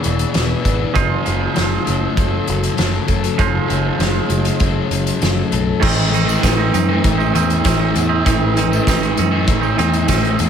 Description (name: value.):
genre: rock, shoegaze and dream pop.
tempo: 98 BPM.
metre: 4/4.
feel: straight.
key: unclear.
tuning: A4 = 437 Hz.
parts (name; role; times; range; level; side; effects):
warbly tape-like pad; sustained chords; 0.0-10.5 s; E4 to E6; -27 LUFS; right 2 dB; chorus, built-in reverb.
picked twelve-string acoustic guitar; arpeggios; 0.0-10.5 s; E3 to A4; -26 LUFS; left 7 dB; lush chorus, analog delay.
thick fuzz guitar; riff; 0.0-10.5 s; E2 to A3; -21 LUFS; left 8 dB; distortion, analog chorus.
twangy electric guitar; riff; 0.0-10.5 s; A2 to D5; -20 LUFS; right 10 dB; reverse reverb.
loose indie drum kit; drums; 0.0-10.5 s; crash cymbal, hi-hat, kick drum, snare drum; -20 LUFS; equal; none.
overdriven picked electric bass; bass; 0.1-10.5 s; E1 to F#2; -20 LUFS; equal; none.
tambourine; percussion; 6.3-10.5 s; none; -32 LUFS; right 12 dB; none.
room: light reverb.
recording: none.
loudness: -14 LUFS.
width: side -8 dB against mid.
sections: 0.0-5.8 A section; 5.8-10.5 B section.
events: none.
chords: 0.0 E7; 1.0 F#m7; 5.8 Amaj7.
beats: 0.34 | 0.95 1.56 2.17 2.78 | 3.39 4.00 4.61 5.22 | 5.83 6.43 7.04 7.65 | 8.26 8.87 9.48 10.09.